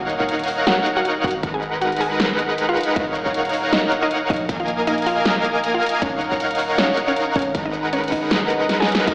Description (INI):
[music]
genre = future bass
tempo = 157 BPM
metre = 4/4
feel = swing 56% on 16ths, half-time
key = Eb minor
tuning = A4 = 439 Hz
[part]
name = mallet-like synth pluck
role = melody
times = 0.0-9.1 s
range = Db4 to Ab5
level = -24 LUFS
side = equal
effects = chorus, sidechain pumping, digital delay
[part]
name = supersaw chords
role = riff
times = 0.0-9.1 s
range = Ab3 to Ab5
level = -20 LUFS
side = equal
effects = vintage 12-bit sampler grit, sidechain pumping
[part]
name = warm 808-style bass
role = bass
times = 0.0-9.1 s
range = Eb1 to Bb1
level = -34 LUFS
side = equal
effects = sidechain pumping
[part]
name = big-room dance drum kit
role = drums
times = 0.1-9.1 s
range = crash cymbal, hi-hat, ride cymbal, snare drum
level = -24 LUFS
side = equal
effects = none
[part]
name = electronic kick drum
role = drums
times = 0.2-9.1 s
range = none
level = -28 LUFS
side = equal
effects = none
[part]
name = swell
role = sound effects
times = 8.5-9.1 s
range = none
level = -28 LUFS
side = left 1 dB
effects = none
[part]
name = felt-muted upright piano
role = accompaniment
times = 9.1 s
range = Gb3 to Bb4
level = -24 LUFS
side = equal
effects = sidechain pumping
[sound]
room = moderate huge ambient reverb, RT60 6.1 s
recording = played on a big sound system in a bare room, large studio reverb, AM radio sound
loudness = -17 LUFS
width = side -27 dB against mid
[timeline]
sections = 0.0-9.1 A section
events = swell 8.5-9.1; drum fill 8.7-9.1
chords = 0.0 Ebm7; 1.2 Abm7; 3.0 Ebm7; 4.3 Bb7sus4; 6.0 Ebm7; 7.4 Abm7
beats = 0.29 0.67 1.05 | 1.43 1.81 2.20 2.58 | 2.96 3.34 3.73 4.11 | 4.49 4.87 5.25 5.64 | 6.02 6.40 6.78 7.17 | 7.55 7.93 8.31 8.69 | 9.08